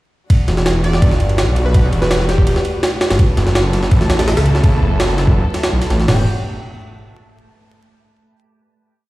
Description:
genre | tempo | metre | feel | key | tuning
drum and bass, jungle | 166 BPM | 4/4 | straight | E minor | A4 = 440 Hz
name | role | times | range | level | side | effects
dark studio string section | sustained chords | 0.3-6.3 s | G3 to A4 | -26 LUFS | equal | none
jungle sampler-style drum kit | drums | 0.3-6.2 s | crash cymbal, kick drum, ride cymbal, snare drum, toms | -15 LUFS | equal | overdrive
detuned saw bass | bass | 0.5-6.2 s | E1 to C#2 | -15 LUFS | equal | none
plucky unison lead | melody | 0.8-2.6 s | G4 to D5 | -25 LUFS | right 1 dB | dub echo
wind-like tuned noise texture | texture | 3.9-6.1 s | A3 to A5 | -30 LUFS | right 2 dB | built-in reverb
room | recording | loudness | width
light reverb, digital ambience | played on a big sound system in a bare room, large studio reverb, vinyl crackle | -12 LUFS | side -18 dB against mid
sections
0.3-6.1 drop; 6.1-7.5 final chord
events
drop 0.3-6.1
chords
0.3 Em11; 3.2 F#m7; 6.1 Em11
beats
| 0.30 0.66 1.02 1.38 | 1.75 2.11 2.47 2.83 | 3.19 3.55 3.91 4.28 | 4.64 5.00 5.36 5.72 | 6.08

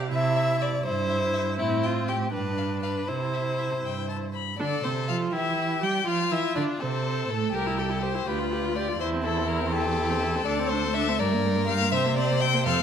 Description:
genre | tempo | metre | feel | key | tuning
quick classical-period movement for string quartet | 82 BPM (dotted quarters) | 6/8 | straight | C major, F major from 4.6 s | A4 = 438 Hz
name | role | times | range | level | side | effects
clear viola | accompaniment | 0.0-12.8 s | G3 to G4 | -31 LUFS | right 2 dB | none
clear violin | second line | 0.1-12.8 s | E4 to E5 | -30 LUFS | left 3 dB | none
rich cello | bass | 0.1-12.8 s | C2 to G3 | -28 LUFS | right 5 dB | none
rich violin | melody | 0.4-12.8 s | A4 to B5 | -29 LUFS | left 8 dB | none
room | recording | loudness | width
moderate recital hall reverb, RT60 1.3 s | none | -24 LUFS | side -8 dB against mid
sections
0.0-4.6 A section; 4.6-12.8 B section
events
none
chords
0.1 C; 1.6 Am7; 2.3 G7; 3.1 C; 4.6 F; 5.3 Em; 6.1 F; 7.5 C; 8.3 G7/D; 9.0 C/E; 10.5 D5; 11.2 Gm; 11.9 C9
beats
| 0.12 0.84 | 1.58 2.32 | 3.07 3.83 | 4.59 5.33 | 6.07 6.80 | 7.53 8.27 | 9.00 9.73 | 10.46 11.20 | 11.92 12.65

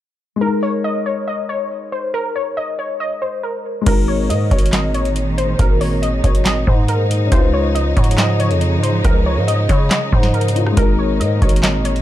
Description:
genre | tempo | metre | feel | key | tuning
hip hop, trap | 139 BPM | 4/4 | half-time | unclear | A4 = 440 Hz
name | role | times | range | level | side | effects
warbly dusty pluck | melody | 0.4-12.0 s | Bb4 to Eb5 | -21 LUFS | left 1 dB | chorus, tape echo
dark concert grand piano | accompaniment | 0.4-12.0 s | Ab3 to Bb4 | -25 LUFS | left 7 dB | none
warm symphonic string section | sustained chords | 3.9-12.0 s | Bb2 to Eb4 | -23 LUFS | right 1 dB | none
growling 808-style bass | bass | 3.9-12.0 s | Ab1 to Db3 | -18 LUFS | equal | none
booming analog drum machine | drums | 3.9-12.0 s | crash cymbal, handclaps, hi-hat, kick drum, rim click, snare drum | -16 LUFS | equal | none
room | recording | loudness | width
little or no reverb | dark, warm production | -14 LUFS | side -13 dB against mid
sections
0.4-3.9 A section; 3.9-12.0 B section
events
none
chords
0.4 Absus2; 7.3 Dbadd9; 10.8 Absus2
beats
| 0.41 0.84 1.28 1.71 | 2.14 2.57 3.00 3.43 | 3.87 4.30 4.73 5.16 | 5.59 6.02 6.46 6.89 | 7.32 7.75 8.18 8.61 | 9.04 9.48 9.91 10.34 | 10.77 11.20 11.63

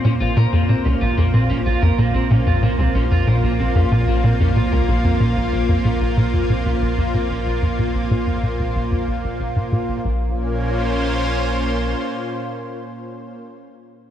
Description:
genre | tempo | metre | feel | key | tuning
ambient, sequencer-driven space music | 93 BPM | 4/4 | straight | Bb minor | A4 = 441 Hz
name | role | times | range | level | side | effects
lush unison pad | sustained chords | 0.0-13.4 s | Bb2 to C5 | -22 LUFS | equal | chorus
electric guitar at the edge of break-up | arpeggios | 0.0-10.3 s | Bb3 to Bb4 | -27 LUFS | moving between left 6 dB and right 6 dB | auto-pan, tape echo
tight sequencer bass | riff | 0.0-10.3 s | Bb1 to Bb2 | -18 LUFS | equal | ensemble chorus, tape echo
warm sub bass | bass | 0.0-11.9 s | Bb1 | -25 LUFS | equal | none
room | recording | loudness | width
moderate plate reverb, RT60 3.0 s | cassette tape | -17 LUFS | side -10 dB against mid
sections
0.0-10.0 A section; 10.0-12.6 B section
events
fade-out on clean electric guitar 0.0-10.0; filter sweep on analog synth bass 0.0-10.0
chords
0.0 Bbmadd9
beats
0.36 1.01 1.66 | 2.30 2.95 3.59 4.24 | 4.88 5.53 6.17 6.82 | 7.46 8.11 8.75 9.40 | 10.04 10.69 11.33 11.98

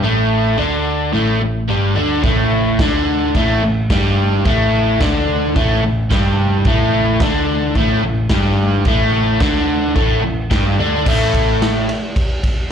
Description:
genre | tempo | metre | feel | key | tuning
garage rock duo or trio | 109 BPM | 4/4 | straight | unclear | A4 = 442 Hz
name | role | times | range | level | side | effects
crunchy overdriven guitar | riff | 0.0-11.9 s | G2 to D4 | -16 LUFS | equal | slapback echo
hollow-body short-scale picked electric bass | bass | 0.0-11.8 s | G1 to D2 | -19 LUFS | equal | overdrive
raw garage drum kit | drums | 2.2-12.6 s | crash cymbal, kick drum, ride cymbal, snare drum | -19 LUFS | equal | none
room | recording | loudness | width
small room ambience | live gig heard through the venue's PA, club reverb | -13 LUFS | side -8 dB against mid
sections
0.0-11.1 A section; 11.1-12.7 B section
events
none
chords
0.0 Gsus2; 11.1 N.C.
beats
| 0.03 0.59 1.14 1.70 | 2.25 2.80 3.35 3.90 | 4.46 5.01 5.56 6.11 | 6.66 7.21 7.76 8.31 | 8.86 9.41 9.96 10.51 | 11.06 11.62 12.17

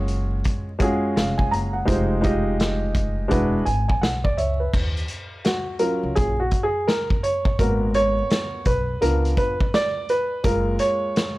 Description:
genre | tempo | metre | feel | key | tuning
hip hop, jazz-hop | 84 BPM | 4/4 | swing 63% on 16ths | Eb minor | A4 = 440 Hz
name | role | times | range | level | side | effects
dark upright piano | accompaniment | 0.0-11.4 s | Gb3 to Bb5 | -22 LUFS | right 1 dB | none
upright bass | bass | 0.0-10.8 s | E1 to Eb2 | -24 LUFS | equal | none
vintage drum kit | drums | 0.1-11.4 s | crash cymbal, hi-hat, kick drum, snare drum | -24 LUFS | equal | none
room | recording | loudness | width
small room reverb | vinyl crackle | -19 LUFS | side -18 dB against mid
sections
0.0-4.7 A section; 4.7-11.4 B section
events
upright piano fill 3.3-4.7; upright piano solo 4.7-11.4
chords
0.0 Gbmaj7(no3); 1.9 Fm9; 3.3 E9; 4.7 Ebm9 (rootless); 7.6 Abm9; 9.0 Db7b9; 10.4 Gbmaj7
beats
0.45 1.16 | 1.88 2.59 3.30 4.02 | 4.73 5.45 6.16 6.88 | 7.59 8.30 9.02 9.73 | 10.45 11.16

